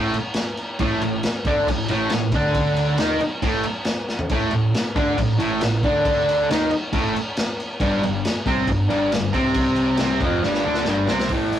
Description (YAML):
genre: garage rock duo or trio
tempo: 137 BPM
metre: 4/4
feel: straight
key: A minor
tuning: A4 = 440 Hz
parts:
  - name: fuzz guitar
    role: riff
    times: 0.0-11.6 s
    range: F2 to D#4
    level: -20 LUFS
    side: equal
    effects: distortion
  - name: fuzz picked electric bass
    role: bass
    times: 0.0-11.6 s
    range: F1 to D#2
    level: -30 LUFS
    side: equal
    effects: overdrive
  - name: crunchy breakbeat drum kit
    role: drums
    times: 0.1-11.6 s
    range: crash cymbal, hi-hat, kick drum, snare drum, toms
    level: -24 LUFS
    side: equal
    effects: none
room: moderate studio reverb, RT60 0.5 s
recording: rough rehearsal-room recording, warm saturation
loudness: -19 LUFS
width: side -10 dB against mid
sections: 0.0-11.3 A section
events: drum fill 4.1, 10.4-11.3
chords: 0.0 Asus4; 7.8 G5